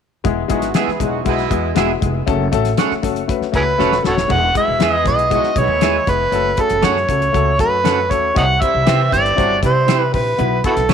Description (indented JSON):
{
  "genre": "uptempo 1960s-style soul",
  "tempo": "118 BPM",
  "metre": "4/4",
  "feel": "straight",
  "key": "E major",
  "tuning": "A4 = 440 Hz",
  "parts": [
    { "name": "warm baby grand piano", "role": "accompaniment", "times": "0.2-10.9 s", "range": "G#3 to C5", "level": "-21 LUFS", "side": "left 11 dB", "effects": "none" },
    { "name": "upright bass", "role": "bass", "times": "0.2-10.9 s", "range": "D#1 to C3", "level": "-22 LUFS", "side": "right 2 dB", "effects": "none" },
    { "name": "cloth-damped thuddy drum kit", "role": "drums", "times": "0.2-10.9 s", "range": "crash cymbal, hi-hat, kick drum, snare drum", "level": "-22 LUFS", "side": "left 3 dB", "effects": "none" },
    { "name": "clear horn section", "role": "second line", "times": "0.5-10.1 s", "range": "B2 to G#4", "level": "-24 LUFS", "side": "right 13 dB", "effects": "none" },
    { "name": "electric guitar at the edge of break-up", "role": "stabs", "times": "0.7-10.9 s", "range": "B3 to F#5", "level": "-24 LUFS", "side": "right 14 dB", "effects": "wide subtle chorus" },
    { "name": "overdriven harmonica", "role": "melody", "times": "3.6-10.9 s", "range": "E4 to F#5", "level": "-16 LUFS", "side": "right 1 dB", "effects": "none" }
  ],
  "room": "light reverb",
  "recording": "1960s-style stereo with parts hard left and right",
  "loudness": "-14 LUFS",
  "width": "side -7 dB against mid",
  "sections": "0.3-4.3 A section; 4.3-10.9 B section",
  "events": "drum fill 3.8-4.3",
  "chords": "0.3 E; 2.3 F#m; 4.3 E; 6.3 F#m; 8.4 C; 10.4 Bsus4",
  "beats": "| 0.25 0.76 1.26 1.77 | 2.27 2.78 3.29 3.79 | 4.30 4.80 5.31 5.82 | 6.33 6.83 7.34 7.85 | 8.36 8.86 9.37 9.88 | 10.39 10.89"
}